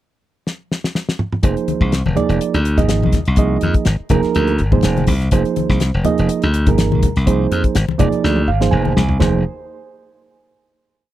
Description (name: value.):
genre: electric jazz fusion.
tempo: 124 BPM.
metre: 4/4.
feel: swing 54% on 16ths.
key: F dorian.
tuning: A4 = 440 Hz.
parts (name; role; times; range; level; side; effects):
damped 70s drum kit; drums; 0.5-9.3 s; hi-hat, kick drum, snare drum, toms; -18 LUFS; left 1 dB; none.
bright reed electric piano; accompaniment; 1.4-9.4 s; F3 to Ab5; -19 LUFS; right 6 dB; overdrive, spring reverb.
glassy slap bass; bass; 1.4-9.4 s; F1 to F2; -16 LUFS; left 1 dB; none.
congas; percussion; 1.7-9.4 s; none; -23 LUFS; left 7 dB; none.
room: light reverb.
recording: dry, close 1970s-style studio recording.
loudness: -14 LUFS.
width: side -13 dB against mid.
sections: 0.0-1.4 pickup bar; 1.4-9.2 groove; 9.2-11.1 final chord.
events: drum fill 0.5-1.4, 8.2-9.2; reed electric piano fill 8.2-9.2.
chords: 0.0 N.C.; 1.4 Fm7.